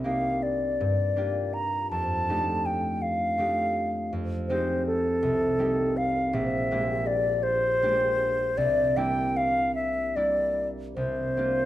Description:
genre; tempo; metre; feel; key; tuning
classical, impressionist duo for flute and harp; 54 BPM (dotted quarters); 6/8; rubato; F major; A4 = 439 Hz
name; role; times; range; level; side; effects
concert flute; melody; 0.0-11.7 s; A4 to Bb5; -25 LUFS; left 1 dB; none
concert harp; accompaniment; 0.0-11.7 s; Bb1 to G4; -29 LUFS; right 1 dB; none
room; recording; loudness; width
moderate recital hall reverb, RT60 1.4 s; none; -24 LUFS; side -14 dB against mid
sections
0.0-11.7 A section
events
none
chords
0.0 Cm9; 0.8 Gm7; 1.9 F13; 4.1 Fm9; 5.2 Cm7; 6.3 Bb13; 8.6 C9; 11.0 C9sus4

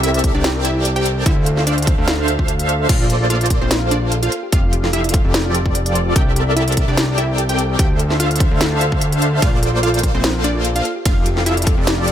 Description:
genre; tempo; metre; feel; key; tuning
future bass; 147 BPM; 4/4; swing 54% on 16ths, half-time; F major; A4 = 440 Hz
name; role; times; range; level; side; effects
wide unison pluck; melody; 0.0-11.6 s; C4 to G5; -24 LUFS; right 1 dB; sidechain pumping, digital delay
thumb-piano-like synth pluck; arpeggios; 0.0-12.1 s; D4 to A5; -30 LUFS; left 3 dB; chorus, sidechain pumping, digital delay
big bright polysynth; riff; 0.0-12.1 s; F3 to G5; -20 LUFS; equal; wide subtle chorus, sidechain pumping
fat analog bass; bass; 0.0-12.1 s; F1 to D2; -19 LUFS; equal; sidechain pumping
trap drum kit; drums; 0.0-12.1 s; crash cymbal, hi-hat, ride cymbal, snare drum; -22 LUFS; equal; none
electronic kick drum; drums; 0.2-11.8 s; none; -17 LUFS; equal; none
room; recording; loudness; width
little or no reverb; none; -14 LUFS; side -10 dB against mid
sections
0.0-12.1 A section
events
none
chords
0.0 C13; 1.3 Dm7; 2.9 Bbmaj9; 4.3 F69; 6.2 C13; 7.8 Dm7; 9.4 Bbmaj9; 10.9 F69

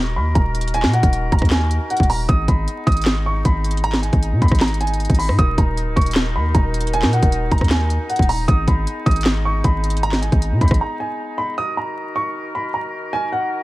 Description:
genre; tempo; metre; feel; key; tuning
hip hop, trap; 155 BPM; 4/4; half-time; Eb minor; A4 = 443 Hz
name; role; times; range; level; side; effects
dark baby grand piano; melody; 0.0-13.6 s; Gb5 to Eb6; -23 LUFS; right 1 dB; none
warm woodwind section; sustained chords; 0.0-13.6 s; Eb3 to Bb4; -28 LUFS; left 2 dB; none
warm 808-style bass; bass; 0.0-10.8 s; Db1 to Cb3; -20 LUFS; equal; none
trap drum kit; drums; 0.4-10.8 s; handclaps, hi-hat, kick drum, rim click, snare drum; -18 LUFS; equal; vintage 12-bit sampler grit
room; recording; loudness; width
small room ambience; vinyl crackle; -16 LUFS; side -18 dB against mid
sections
0.0-11.6 A section; 11.6-13.6 A section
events
break 10.8-11.6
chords
0.0 Ebm; 2.3 Abm; 5.4 Ebm; 8.5 Abm; 11.6 Ebm

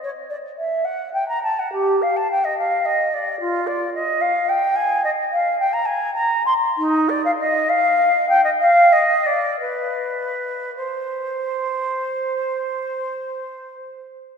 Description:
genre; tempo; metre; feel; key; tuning
classical, baroque-style fantasia for unaccompanied flute; 48-74 BPM (dotted quarters); 6/8; rubato; G minor, C minor from 3.4 s; A4 = 440 Hz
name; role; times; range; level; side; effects
mellow concert flute; solo; 0.0-13.8 s; Eb4 to C6; -18 LUFS; equal; none
room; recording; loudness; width
wet church reverb, RT60 3.2 s; none; -18 LUFS; side -6 dB against mid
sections
0.0-10.8 A section; 10.8-14.4 B section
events
slowing down 5.9-10.8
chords
none

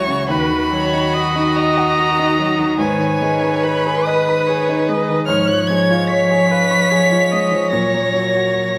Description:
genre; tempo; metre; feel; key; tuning
classical, slow romantic movement for piano quintet; 49 BPM (dotted quarters); 6/8; uneven beats, rubato; B major; A4 = 441 Hz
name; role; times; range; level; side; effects
rich violin; melody; 0.0-8.8 s; G#5 to B6; -23 LUFS; equal; none
warm cello; second line; 0.0-8.8 s; D#3 to F#3; -25 LUFS; equal; none
warm violin; second line; 0.0-8.8 s; F#4 to C#5; -22 LUFS; equal; none
rich viola; accompaniment; 0.0-8.8 s; B4 to D#5; -24 LUFS; equal; none
warm grand piano; accompaniment; 0.0-8.8 s; C#2 to C#6; -22 LUFS; equal; none
room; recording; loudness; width
wet recital hall reverb, RT60 1.4 s; none; -16 LUFS; mono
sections
0.0-8.8 A section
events
none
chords
0.3 B/D#; 2.8 G#m; 5.3 C#7/G#; 7.7 F#/A#

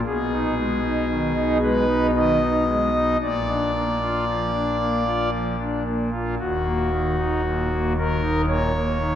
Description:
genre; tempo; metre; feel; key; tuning
classical, chorale-style piece for pipe organ; 57 BPM; 3/4; rubato; Eb minor; A4 = 440 Hz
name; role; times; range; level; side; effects
pipe organ, foundations; solo; 0.0-9.2 s; Eb1 to Eb5; -20 LUFS; equal; none
room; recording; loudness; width
wet church reverb, RT60 2.7 s; none; -20 LUFS; side -10 dB against mid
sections
0.0-9.2 A section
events
none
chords
0.0 Abm/Cb; 3.2 Bb; 6.4 Ebm

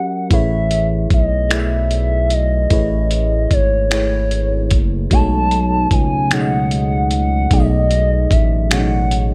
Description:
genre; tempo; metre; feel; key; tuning
slow six-eight R&B; 50 BPM (dotted quarters); 6/8; straight; unclear; A4 = 439 Hz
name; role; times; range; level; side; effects
gliding portamento lead; melody; 0.0-9.3 s; C#5 to A5; -23 LUFS; equal; chorus
FM electric piano; accompaniment; 0.0-9.3 s; B2 to F#5; -24 LUFS; equal; chorus
smooth gliding synth bass; bass; 0.3-9.3 s; F#1 to C#2; -20 LUFS; equal; none
dusty soul sampler-style drum kit; drums; 0.3-9.3 s; finger snaps, hi-hat, kick drum; -20 LUFS; equal; none
room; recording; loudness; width
little or no reverb; none; -16 LUFS; mono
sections
0.3-9.3 A section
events
break 0.0-0.3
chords
0.3 Amaj9; 5.1 B13

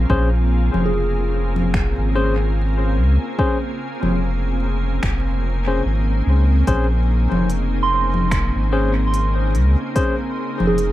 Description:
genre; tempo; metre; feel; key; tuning
ambient dub; 73 BPM; 4/4; swing 57% on 16ths; Bb minor; A4 = 438 Hz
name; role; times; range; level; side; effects
soft additive organ-like pad; sustained chords; 0.0-10.9 s; Db3 to Ab4; -25 LUFS; equal; ensemble chorus, built-in reverb, vintage 12-bit sampler grit
soft synth bell; arpeggios; 0.0-10.9 s; Ab4 to C6; -26 LUFS; right 4 dB; chorus, phaser, dub echo
warm sub bass; bass; 0.0-10.9 s; F1 to Db2; -18 LUFS; equal; none
barky tine electric piano; stabs; 0.1-10.1 s; Db4 to C5; -25 LUFS; left 3 dB; dub echo
electronic kick drum; drums; 0.1-10.1 s; none; -22 LUFS; equal; none
organic electronic drum kit; drums; 0.7-10.9 s; congas, finger snaps, hi-hat; -25 LUFS; left 1 dB; overdrive, dub echo
room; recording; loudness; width
light reverb, digital ambience; vinyl crackle; -16 LUFS; side -15 dB against mid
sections
0.0-10.9 A section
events
none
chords
0.0 Bbm9

